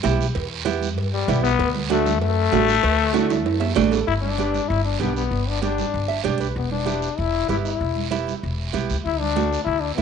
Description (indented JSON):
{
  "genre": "latin, cumbia",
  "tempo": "193 BPM",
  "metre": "4/4",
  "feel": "straight",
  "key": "G major",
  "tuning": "A4 = 440 Hz",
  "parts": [
    { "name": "nylon-string guitar", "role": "accompaniment", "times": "0.0-10.0 s", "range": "A3 to E5", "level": "-25 LUFS", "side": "right 10 dB", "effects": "none" },
    { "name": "upright bass", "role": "bass", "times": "0.0-10.0 s", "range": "E1 to G2", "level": "-25 LUFS", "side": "left 1 dB", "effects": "none" },
    { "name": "congas", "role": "percussion", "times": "0.0-10.0 s", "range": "none", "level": "-31 LUFS", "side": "right 11 dB", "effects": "none" },
    { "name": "guiro", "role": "percussion", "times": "0.0-10.0 s", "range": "none", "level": "-34 LUFS", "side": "right 12 dB", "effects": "none" },
    { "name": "timbales and cowbell", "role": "percussion", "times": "0.0-4.0 s", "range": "none", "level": "-29 LUFS", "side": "right 11 dB", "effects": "none" },
    { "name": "growling trombone", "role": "second line", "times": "1.1-10.0 s", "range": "G3 to E4", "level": "-23 LUFS", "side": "left 10 dB", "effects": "none" }
  ],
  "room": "light reverb, small room reverb",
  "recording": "1960s-style stereo with parts hard left and right, nothing above 10.6 kHz",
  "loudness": "-19 LUFS",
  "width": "side -7 dB against mid",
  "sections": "0.0-4.1 A section; 4.1-10.0 B section",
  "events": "trombone solo 0.0-4.1, 4.1-10.0; drum fill 3.1-4.1; nylon-string guitar fill 3.5-4.1, 5.9-6.6",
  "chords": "0.0 Em; 1.6 D; 4.1 G; 6.6 Em; 9.0 D"
}